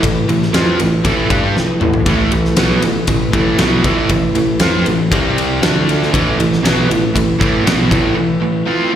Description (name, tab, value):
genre	hard rock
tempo	118 BPM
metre	4/4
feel	straight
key	A minor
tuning	A4 = 442 Hz
part	mellow tonewheel organ	sustained chords	0.0-9.0 s	A3 to E5	-23 LUFS	left 1 dB	slow rotary speaker
part	overdriven electric guitar	riff	0.0-9.0 s	A2 to G4	-20 LUFS	left 9 dB	none
part	overdriven electric guitar	riff	0.0-9.0 s	A2 to G4	-17 LUFS	right 7 dB	slapback echo
part	picked electric bass	bass	0.0-8.1 s	A1 to G2	-19 LUFS	left 1 dB	none
part	huge arena drum kit	drums	0.0-8.0 s	kick drum, ride cymbal, snare drum, toms	-17 LUFS	left 1 dB	none
room	light reverb, small room reverb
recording	live gig heard through the venue's PA, recital hall reverb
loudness	-12 LUFS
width	side -10 dB against mid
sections	0.0-9.0 A section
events	drum fill 1.6-2.1; break 8.2-9.0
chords	0.0 Am; 5.1 C5; 5.6 D5; 6.1 Am